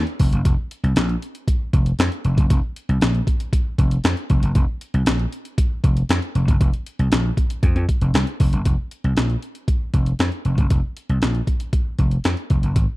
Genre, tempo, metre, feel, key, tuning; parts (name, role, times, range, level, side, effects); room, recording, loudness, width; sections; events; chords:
early-eighties boogie funk; 117 BPM; 4/4; straight; A4 = 440 Hz
vintage slap bass; bass; 0.0-12.8 s; F1 to F2; -19 LUFS; equal
breakbeat sampler-style drum kit; drums; 0.1-12.9 s; handclaps, hi-hat, kick drum, snare drum; -20 LUFS; equal
digital ambience; dry, close 1970s-style studio recording; -18 LUFS; side -19 dB against mid
0.0-8.7 A section; 8.7-13.0 B section